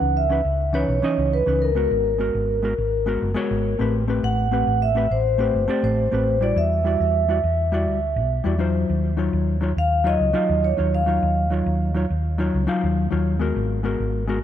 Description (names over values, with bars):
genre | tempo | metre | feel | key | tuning
sunset chillout | 103 BPM | 4/4 | straight | unclear | A4 = 440 Hz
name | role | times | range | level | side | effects
vibraphone with medium mallets | melody | 0.0-11.5 s | A#4 to F#5 | -23 LUFS | moving between left 6 dB and right 8 dB | auto-pan, tape echo
hollow-body jazz guitar | accompaniment | 0.0-14.4 s | E3 to E#5 | -24 LUFS | moving between left 6 dB and right 4 dB | auto-pan, tape echo
hollow-body short-scale fingered electric bass | bass | 0.0-14.4 s | F#1 to E2 | -23 LUFS | equal | none
room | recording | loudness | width
light reverb, small room ambience | none | -19 LUFS | side -10 dB against mid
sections
0.0-8.9 A section; 8.9-14.4 B section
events
none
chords
0.0 C#m9; 1.9 G#m9; 3.9 Am9; 6.6 Em9; 8.9 D#m9; 13.6 G#m9